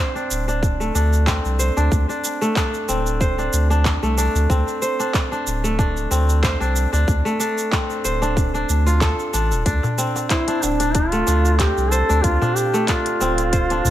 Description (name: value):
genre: organic downtempo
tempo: 93 BPM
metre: 4/4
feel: swing 54% on 16ths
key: D minor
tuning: A4 = 440 Hz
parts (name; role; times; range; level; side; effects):
- kora; arpeggios; 0.0-13.9 s; A3 to C5; -22 LUFS; equal; low-pass filter, ping-pong delay
- organic electronic drum kit; drums; 0.2-13.9 s; cabasa, handclaps, hi-hat; -27 LUFS; right 1 dB; none
- warm sub bass; bass; 0.3-13.9 s; D1 to D2; -20 LUFS; equal; sidechain pumping
- electronic kick drum; drums; 0.6-13.7 s; none; -22 LUFS; equal; none
- darbuka; percussion; 9.8-13.9 s; none; -26 LUFS; left 1 dB; none
- warm duduk; melody; 10.3-13.9 s; D4 to A4; -20 LUFS; equal; ping-pong delay
room: light reverb, digital ambience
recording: none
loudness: -17 LUFS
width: side -13 dB against mid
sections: 0.0-13.9 A section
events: none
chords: 0.0 D7(no3)